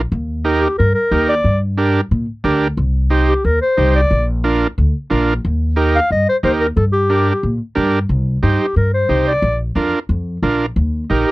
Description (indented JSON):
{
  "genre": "latin, cumbia",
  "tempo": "180 BPM",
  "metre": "4/4",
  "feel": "straight",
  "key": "unclear",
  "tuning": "A4 = 440 Hz",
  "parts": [
    { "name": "upright bass", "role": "bass", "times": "0.0-11.2 s", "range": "Bb1 to Bb2", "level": "-17 LUFS", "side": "equal", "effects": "none" },
    { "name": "overdriven combo organ", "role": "accompaniment", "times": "0.4-11.3 s", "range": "D4 to C5", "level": "-16 LUFS", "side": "right 3 dB", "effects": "none" },
    { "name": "mellow clarinet", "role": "melody", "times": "0.6-11.3 s", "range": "G4 to F5", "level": "-16 LUFS", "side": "left 1 dB", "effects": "none" }
  ],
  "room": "little or no reverb",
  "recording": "dry, close 1970s-style studio recording",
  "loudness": "-14 LUFS",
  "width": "side -19 dB against mid",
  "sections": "0.0-8.1 A section; 8.1-11.3 B section",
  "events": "none",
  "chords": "0.1 Eb; 1.4 Gm; 2.8 Cm; 4.1 Bb; 5.4 Eb; 6.8 Gm; 8.1 Cm; 9.4 Bb; 10.8 Eb",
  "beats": "| 0.11 0.45 0.78 1.11 | 1.44 1.78 2.11 2.44 | 2.78 3.11 3.44 3.77 | 4.11 4.44 4.77 5.11 | 5.44 5.77 6.10 6.44 | 6.77 7.10 7.43 7.77 | 8.10 8.43 8.77 9.10 | 9.43 9.76 10.10 10.43 | 10.76 11.10"
}